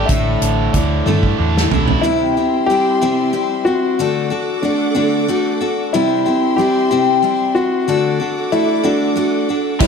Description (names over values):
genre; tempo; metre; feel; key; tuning
folk rock and heartland rock; 62 BPM (dotted quarters); 6/8; straight; D mixolydian; A4 = 438 Hz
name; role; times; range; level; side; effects
dark grand piano; melody; 0.0-9.9 s; D4 to E5; -18 LUFS; left 1 dB; slapback echo, tape echo
picked steel-string acoustic guitar; accompaniment; 0.0-9.9 s; A2 to A4; -18 LUFS; left 3 dB; slapback echo
raw garage guitar; riff; 0.0-2.0, 9.8-9.9 s; A2 to E4; -21 LUFS; right 3 dB; overdrive
hollow-body short-scale fingered electric bass; bass; 0.0-2.0, 9.8-9.9 s; A1 to G2; -18 LUFS; right 1 dB; none
natural country drum kit; drums; 0.1-2.0, 9.8-9.9 s; crash cymbal, hi-hat, kick drum, snare drum, toms; -18 LUFS; right 1 dB; none
rich studio string section; sustained chords; 2.0-9.9 s; G3 to D6; -26 LUFS; right 2 dB; none
reed electric piano; accompaniment; 9.8-9.9 s; C4 to C5; -20 LUFS; right 16 dB; fast tremolo
room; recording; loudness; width
moderate concert hall reverb, RT60 1.9 s, small room ambience; big arena sound; -14 LUFS; side -6 dB against mid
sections
0.0-2.0 A section; 2.0-9.9 B section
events
drum fill 1.1-2.0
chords
0.1 Asus4; 2.0 C; 4.0 D; 5.9 C; 7.9 D